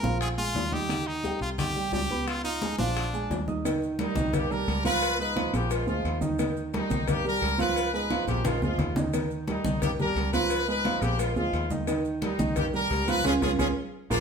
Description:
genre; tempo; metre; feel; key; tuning
latin, salsa; 175 BPM; 4/4; straight; Eb major; A4 = 439 Hz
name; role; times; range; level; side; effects
brilliant trumpet; melody; 0.0-3.4 s; D4 to Bb4; -31 LUFS; left 1 dB; none
dark concert grand piano; accompaniment; 0.0-14.2 s; Eb3 to F6; -29 LUFS; right 3 dB; none
fingered electric bass; bass; 0.0-14.2 s; Bb1 to Eb2; -32 LUFS; left 1 dB; none
bongos and cowbell; percussion; 0.0-14.2 s; none; -35 LUFS; left 6 dB; none
congas; percussion; 0.0-14.2 s; none; -34 LUFS; left 1 dB; none
maracas; percussion; 0.0-14.2 s; none; -46 LUFS; right 5 dB; none
brilliant horn section; melody; 4.0-14.2 s; G3 to Cb5; -29 LUFS; equal; none
room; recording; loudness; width
wet stone room reverb, RT60 0.9 s; band playing live in one room, faint mains hum; -25 LUFS; side -6 dB against mid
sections
0.0-3.7 A section; 3.7-14.2 B section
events
drum fill 8.1-9.1; band accent 13.3-14.2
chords
0.2 Bb5; 0.9 Eb; 1.6 Cm; 2.3 Db7; 3.0 Bb7; 3.7 Eb; 4.3 Cm7; 5.0 Db7; 5.7 Bb7; 6.4 Eb; 7.1 Cm7; 7.8 Db7; 8.4 Bb7; 9.1 Eb; 9.8 Cm7; 10.5 Db7; 11.2 Bb7; 11.9 Eb; 12.6 Cm7; 13.3 Db

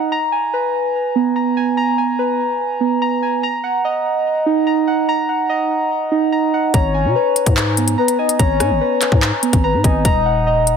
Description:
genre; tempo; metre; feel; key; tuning
hip hop, drill; 145 BPM; 4/4; half-time; G# minor; A4 = 440 Hz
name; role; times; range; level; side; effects
muted felt-like synth keys; arpeggios; 0.0-10.8 s; B3 to A#5; -16 LUFS; right 3 dB; chorus, ping-pong delay
soft octave-layered synth lead; second line; 6.7-10.8 s; B4 to D#5; -20 LUFS; left 9 dB; chorus, ping-pong delay
growling 808-style bass; bass; 6.7-10.7 s; D#1 to B2; -19 LUFS; left 1 dB; none
drill drum kit; drums; 6.7-10.8 s; handclaps, hi-hat, kick drum, rim click; -16 LUFS; left 1 dB; overdrive
room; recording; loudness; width
light reverb, digital ambience; dense, heavily limited modern master; -14 LUFS; side -6 dB against mid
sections
0.1-10.8 A section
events
none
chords
0.1 G#madd9; 3.4 D#m; 6.7 G#madd9; 10.1 D#m

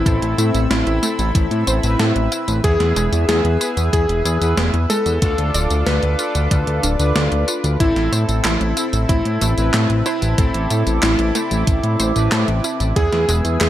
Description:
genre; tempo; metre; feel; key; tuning
synthwave; 93 BPM; 4/4; straight; A harmonic minor; A4 = 440 Hz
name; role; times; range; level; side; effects
clear electric grand piano; melody; 0.0-13.7 s; E4 to B4; -23 LUFS; equal; tape echo
FM electric piano with soft pad layer; second line; 0.0-13.7 s; E4 to B4; -29 LUFS; equal; none
chorused pulse-width pad; sustained chords; 0.0-13.7 s; C4 to E6; -26 LUFS; equal; sidechain pumping
analog synth brass; stabs; 0.0-13.7 s; B3 to B4; -26 LUFS; left 2 dB; chorus, cassette tape, tape echo
fat analog bass; bass; 0.0-13.7 s; D1 to A2; -18 LUFS; equal; none
analog pluck; arpeggios; 0.1-13.5 s; G#3 to D5; -29 LUFS; right 2 dB; none
electronic kick drum; drums; 0.1-13.1 s; none; -18 LUFS; equal; none
gated 80s digital drum machine; drums; 0.1-13.7 s; handclaps, hi-hat, snare drum, tambourine; -22 LUFS; equal; gated reverb, gated reverb snare
room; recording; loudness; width
little or no reverb; none; -15 LUFS; side -12 dB against mid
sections
0.0-13.7 A section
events
none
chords
0.0 Am; 2.6 E; 5.2 Dm; 7.8 Am; 13.0 E

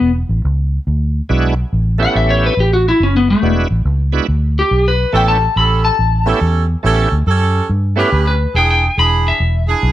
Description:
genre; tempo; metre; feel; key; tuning
electric blues shuffle; 141 BPM; 4/4; swing 64% on 8ths; unclear; A4 = 440 Hz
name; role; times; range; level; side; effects
clean lap steel guitar; melody; 0.0-9.7 s; A3 to B5; -15 LUFS; left 2 dB; slapback echo
vintage muted fingered electric bass; bass; 0.0-9.9 s; E1 to G2; -15 LUFS; equal; none
bright tonewheel organ; accompaniment; 1.3-8.1 s; G#3 to G4; -19 LUFS; right 4 dB; slow rotary speaker, overdrive, chorus vibrato, plate reverb
clear horn section; stabs; 5.1-9.9 s; C#4 to B4; -19 LUFS; right 5 dB; plate reverb
room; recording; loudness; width
light reverb; none; -12 LUFS; side -13 dB against mid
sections
0.0-9.9 A section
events
electric slide guitar solo 0.0-9.9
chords
0.0 E7; 1.7 A7; 3.4 E7; 5.1 A7; 8.5 E7

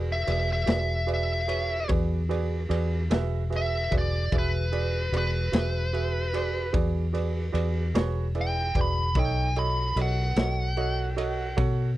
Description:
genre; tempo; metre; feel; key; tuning
slow blues; 50 BPM (dotted quarters); 12/8; straight; E mixolydian; A4 = 444 Hz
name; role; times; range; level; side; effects
clear baby grand piano; accompaniment; 0.0-11.9 s; D#4 to F#5; -32 LUFS; right 6 dB; none
vintage muted fingered electric bass; bass; 0.0-12.0 s; E1 to B2; -27 LUFS; left 1 dB; none
smooth overdriven lead guitar; melody; 0.1-11.6 s; B4 to B5; -29 LUFS; equal; none
raw garage drum kit; drums; 0.3-11.8 s; kick drum, ride cymbal, snare drum; -32 LUFS; left 1 dB; none
room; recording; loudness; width
little or no reverb; none; -24 LUFS; side -15 dB against mid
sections
0.0-12.0 A section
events
lead electric guitar solo 0.0-12.0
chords
0.0 E7; 9.2 B7

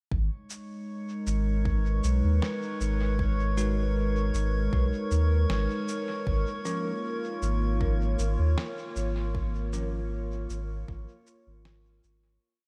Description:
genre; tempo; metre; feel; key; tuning
ambient dub; 78 BPM; 4/4; straight; G# dorian; A4 = 440 Hz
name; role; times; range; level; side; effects
warbly tape-like pad; sustained chords; 0.5-12.4 s; G#3 to C#5; -36 LUFS; equal; chorus, built-in reverb
warm sub bass; bass; 0.1-12.4 s; G#1 to D#2; -29 LUFS; equal; none
electronic kick drum; drums; 0.1-11.0 s; none; -34 LUFS; equal; studio reverb
drifting glass-harmonics texture; texture; 0.6-12.4 s; C#5; -42 LUFS; equal; chorus, built-in reverb
electronic cabasa and snare drum; drums; 0.5-12.2 s; none; -43 LUFS; equal; studio reverb, dub echo
bell-like tine electric piano; stabs; 3.6-10.0 s; E#3 to B4; -42 LUFS; equal; none
room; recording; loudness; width
light reverb; none; -28 LUFS; mono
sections
0.1-12.4 groove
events
fade-out 8.3-12.4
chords
0.1 G#m; 6.3 A#m/G#

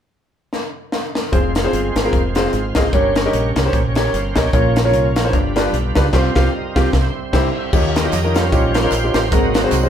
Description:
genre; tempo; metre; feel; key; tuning
uptempo gospel; 150 BPM; 4/4; swing 57% on 8ths; F minor; A4 = 440 Hz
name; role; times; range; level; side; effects
crisp fusion drum kit; drums; 0.5-9.8 s; crash cymbal, hi-hat, kick drum, snare drum; -18 LUFS; equal; none
clear grand piano; accompaniment; 1.3-9.9 s; G2 to Eb5; -19 LUFS; left 1 dB; none
bright tonewheel organ; sustained chords; 1.3-9.9 s; F3 to G5; -24 LUFS; right 4 dB; slow rotary speaker, overdrive, chorus vibrato
deep dub fingered electric bass; bass; 1.3-9.9 s; F1 to F2; -21 LUFS; equal; none
tambourine and handclaps; percussion; 7.7-9.8 s; none; -32 LUFS; right 4 dB; none
room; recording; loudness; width
moderate studio reverb, RT60 0.8 s; band playing live in one room; -14 LUFS; side -9 dB against mid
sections
0.0-1.3 A section; 1.3-7.7 B section; 7.7-9.9 C section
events
drum fill 0.5-1.3; band accent 6.1-7.7; tonewheel organ solo 7.7-9.9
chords
0.0 N.C.; 1.3 Fm; 2.9 Gdim; 4.5 Bbm; 5.3 G7; 6.1 Csus4; 6.9 C; 7.7 Eb9; 9.3 Ab9

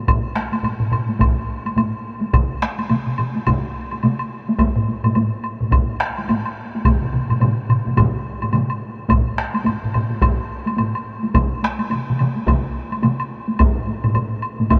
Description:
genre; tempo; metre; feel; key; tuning
japanese traditional, taiko drum ensemble; 107 BPM; 4/4; swing 60% on 16ths; none; none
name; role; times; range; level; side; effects
taiko ensemble; percussion; 0.1-14.8 s; none; -26 LUFS; equal; none
taiko ensemble; percussion; 0.1-14.8 s; none; -25 LUFS; equal; none
taiko ensemble; percussion; 0.1-14.8 s; none; -22 LUFS; equal; none
woodblock; percussion; 0.1-14.8 s; none; -30 LUFS; equal; none
taiko ensemble; percussion; 2.3-13.2 s; none; -25 LUFS; equal; none
room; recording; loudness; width
moderate huge ambient reverb, RT60 7.3 s; none; -20 LUFS; mono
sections
0.1-14.8 A section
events
none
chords
none

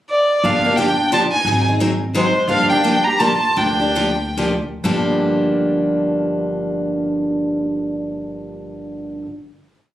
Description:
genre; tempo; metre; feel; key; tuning
acoustic string swing (jazz manouche); 123-176 BPM; 3/4; swing 61% on 8ths; G minor; A4 = 441 Hz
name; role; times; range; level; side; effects
warm violin; melody; 0.1-4.4 s; C5 to Bb5; -17 LUFS; equal; plate reverb
clear clarinet; second line; 0.4-4.4 s; Ab3 to G4; -23 LUFS; right 2 dB; none
picked steel-string acoustic guitar; accompaniment; 0.4-9.3 s; G2 to Ab4; -19 LUFS; left 1 dB; none
upright bass; bass; 0.4-9.2 s; G1 to D2; -25 LUFS; right 1 dB; none
room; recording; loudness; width
moderate studio reverb, RT60 0.7 s; recorded on a phone in the room, club reverb; -15 LUFS; side -13 dB against mid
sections
0.0-0.4 pickup bar; 0.4-4.8 A section; 4.8-7.8 final chord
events
slowing down 2.5-4.8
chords
0.4 Gm7; 1.5 Ab7; 2.5 Gm7

